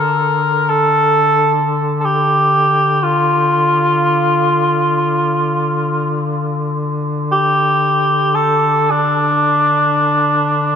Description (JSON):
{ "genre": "caucasian folk, Caucasian lament", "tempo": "free time", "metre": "none", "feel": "none", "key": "D minor", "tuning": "A4 = 440 Hz", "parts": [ { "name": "dark cor anglais", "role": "melody", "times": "0.0-10.8 s", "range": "D4 to Bb4", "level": "-14 LUFS", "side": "equal", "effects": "tape echo" }, { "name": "warm duduk", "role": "drone", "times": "0.0-10.8 s", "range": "D3", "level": "-19 LUFS", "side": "left 2 dB", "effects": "none" } ], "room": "wet church reverb, RT60 3.5 s", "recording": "nothing above 10.6 kHz", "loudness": "-12 LUFS", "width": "side -7 dB against mid", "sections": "0.0-10.8 A section", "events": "none", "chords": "none" }